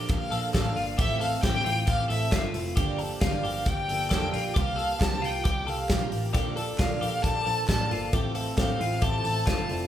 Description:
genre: jangly indie pop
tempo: 134 BPM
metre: 4/4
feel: straight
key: F major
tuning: A4 = 440 Hz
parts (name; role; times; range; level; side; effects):
- clear violin; melody; 0.0-9.9 s; E5 to A5; -30 LUFS; left 1 dB; none
- picked plugged-in twelve-string acoustic guitar; accompaniment; 0.0-9.9 s; G2 to A4; -34 LUFS; right 4 dB; none
- twelve-string electric guitar; arpeggios; 0.0-9.9 s; F4 to A4; -34 LUFS; left 3 dB; spring reverb
- vintage muted picked electric bass; bass; 0.0-9.9 s; F1 to C2; -32 LUFS; equal; none
- modern studio drum kit; drums; 0.1-9.8 s; hi-hat, kick drum, ride cymbal, snare drum; -28 LUFS; equal; none
- group handclap; percussion; 0.1-9.6 s; none; -44 LUFS; right 1 dB; none
- reed electric piano; accompaniment; 6.3-9.9 s; F4 to G5; -36 LUFS; left 4 dB; fast tremolo
room: moderate large studio reverb, RT60 0.8 s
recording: band playing live in one room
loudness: -24 LUFS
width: side -11 dB against mid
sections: 0.0-9.9 A section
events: none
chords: 0.0 Bbmaj7; 1.0 Fmaj7/A; 2.8 Gm7; 4.6 C7sus4; 6.3 Bbmaj7; 8.1 Fmaj7/A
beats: 0.09 0.54 | 0.99 1.43 1.88 2.33 | 2.77 3.22 3.67 4.11 | 4.56 5.01 5.45 5.90 | 6.35 6.79 7.24 7.69 | 8.13 8.58 9.03 9.47

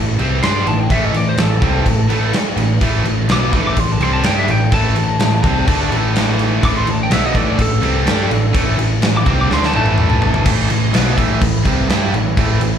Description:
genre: hard rock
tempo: 126 BPM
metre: 4/4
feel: straight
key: A minor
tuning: A4 = 440 Hz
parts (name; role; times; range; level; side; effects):
- sweeping resonant pad; sustained chords; 0.0-12.8 s; A3 to B4; -30 LUFS; right 1 dB; none
- high-gain distorted guitar; riff; 0.0-12.8 s; A2 to G4; -21 LUFS; right 9 dB; distortion, slapback echo
- scooped high-gain guitar; riff; 0.0-10.5 s; A2 to G4; -24 LUFS; left 1 dB; distortion, slapback echo
- sludgy distorted guitar; riff; 0.0-12.8 s; A2 to G4; -24 LUFS; left 11 dB; overdrive
- picked electric bass; bass; 0.0-12.8 s; A1 to G2; -19 LUFS; equal; none
- huge arena drum kit; drums; 0.2-12.7 s; crash cymbal, kick drum, snare drum, toms; -18 LUFS; equal; none
- lightly driven lead guitar; melody; 0.4-10.4 s; A4 to D6; -22 LUFS; equal; slapback echo, tape echo
room: small room ambience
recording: live gig heard through the venue's PA, club reverb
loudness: -13 LUFS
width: side -8 dB against mid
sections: 0.0-10.5 A section; 10.5-12.8 B section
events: lead electric guitar solo 0.0-10.5; drum fill 9.5-10.5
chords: 0.0 Am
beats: 0.43 | 0.91 1.38 1.86 2.34 | 2.82 3.29 3.77 4.25 | 4.72 5.20 5.68 6.16 | 6.63 7.11 7.59 8.07 | 8.54 9.02 9.50 9.98 | 10.46 10.93 11.41 11.89 | 12.37

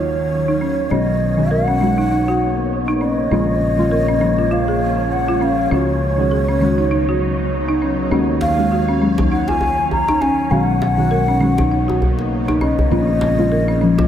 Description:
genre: organic downtempo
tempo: 100 BPM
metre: 4/4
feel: swing 57% on 16ths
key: Eb minor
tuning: A4 = 436 Hz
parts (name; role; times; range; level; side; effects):
- breathy hollow bass bansuri; melody; 0.0-14.1 s; Db5 to Bb5; -21 LUFS; left 1 dB; tape echo
- deep mellow chord stab; accompaniment; 0.0-14.1 s; Eb3 to F#4; -22 LUFS; equal; chorus, phaser
- bowed-like drone; sustained chords; 0.0-14.1 s; C#3 to F5; -24 LUFS; equal; built-in reverb, phaser
- fretless electric bass; bass; 0.0-14.1 s; Bb1 to Eb2; -21 LUFS; equal; tube saturation, lush chorus
- wind-like tuned noise texture; texture; 0.0-14.1 s; Db5; -28 LUFS; right 2 dB; built-in reverb
- folk marimba with medium mallets; arpeggios; 0.5-14.1 s; Db4 to A#4; -22 LUFS; equal; vintage 12-bit sampler grit, low-pass filter, tape echo
- djembe; percussion; 8.4-14.1 s; none; -22 LUFS; equal; none
room: moderate lush hall reverb, RT60 2.2 s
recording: none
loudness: -15 LUFS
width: side -10 dB against mid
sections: 0.0-14.1 A section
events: none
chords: 0.0 Ebm9; 0.9 Bmaj9; 3.3 Bbm7; 5.7 Db9sus4; 8.1 Ebm9; 10.5 Bmaj9; 12.9 Bbm7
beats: 0.31 | 0.91 1.51 2.11 2.71 | 3.31 3.91 4.51 5.11 | 5.71 6.31 6.91 7.51 | 8.11 8.71 9.31 9.91 | 10.51 11.11 11.71 12.31 | 12.91 13.51

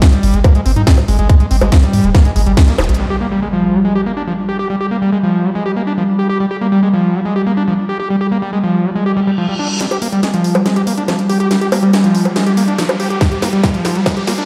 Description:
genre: psychedelic trance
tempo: 141 BPM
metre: 4/4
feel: straight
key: G phrygian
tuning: A4 = 440 Hz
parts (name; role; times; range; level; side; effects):
- evolving wavetable pad; sustained chords; 0.0-14.5 s; G3; -21 LUFS; equal; chorus, built-in reverb, sidechain pumping
- screaming distorted acid line; riff; 0.0-14.4 s; F3 to G4; -18 LUFS; equal; distortion, chorus, sidechain pumping, digital delay
- drum and bass drum kit; drums; 0.0-3.0, 9.8-14.5 s; bongos, hi-hat, snare drum; -22 LUFS; equal; overdrive, high-pass filter on hats, low-pass filter on hats, high-pass filter on perc, low-pass filter on perc, high-pass filter on snare, low-pass filter on snare
- electronic kick drum; drums; 0.0-2.7, 13.2-14.1 s; none; -12 LUFS; equal; overdrive
- round analog bass; bass; 0.2-3.0 s; Eb1 to Ab2; -16 LUFS; equal; none
- zap, impact, reverse cymbal and riser; sound effects; 2.8-4.7, 9.2-14.5 s; none; -30 LUFS; equal; none
room: wet lush hall reverb, RT60 2.2 s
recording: played on a big sound system in a bare room, stone room reverb, high-pass filter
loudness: -14 LUFS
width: mono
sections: 0.0-3.0 A section; 3.0-9.8 B section; 9.8-14.5 C section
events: drop 0.0-3.0; band accent 2.6; drum fill 2.8, 9.8-14.5; impact 3.0-4.7; reverse cymbal 9.2-9.8; build-up 9.8-14.5; riser 9.8-14.5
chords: 0.0 Ab5; 3.0 G5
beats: 0.02 0.44 0.87 | 1.29 1.72 2.15 2.57 | 3.00 3.42 3.85 4.27 | 4.70 5.12 5.55 5.98 | 6.40 6.83 7.25 7.68 | 8.10 8.53 8.96 9.38 | 9.81 10.23 10.66 11.08 | 11.51 11.93 12.36 12.78 | 13.21 13.63 14.06

